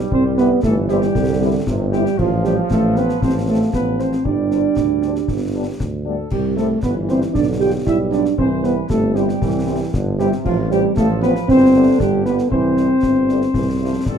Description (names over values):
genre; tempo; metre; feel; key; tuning
military-style march for wind band; 116 BPM; 2/4; straight; C major; A4 = 440 Hz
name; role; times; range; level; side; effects
clear trombone section; sustained chords; 0.0-14.2 s; C3 to G3; -25 LUFS; right 3 dB; none
mellow tuba; bass; 0.0-14.2 s; G1 to D2; -22 LUFS; right 2 dB; none
mellow trumpet section; melody; 0.1-14.2 s; F4 to G5; -31 LUFS; left 3 dB; none
dark euphonium; second line; 0.1-14.2 s; F3 to G4; -17 LUFS; right 1 dB; none
concert bass drum, concert snare drum and clash cymbals; drums; 0.1-14.2 s; none; -26 LUFS; left 2 dB; none
mellow French horn section; accompaniment; 0.4-13.9 s; G3 to F4; -27 LUFS; left 7 dB; none
room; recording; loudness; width
light reverb; dark, warm production; -15 LUFS; side -8 dB against mid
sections
0.0-14.2 A section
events
none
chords
0.1 C; 2.2 F/A; 4.3 Gsus4; 5.3 G; 6.3 C; 7.4 G7/B; 8.4 C; 10.4 F/A; 11.5 C/G; 12.0 G7; 12.5 C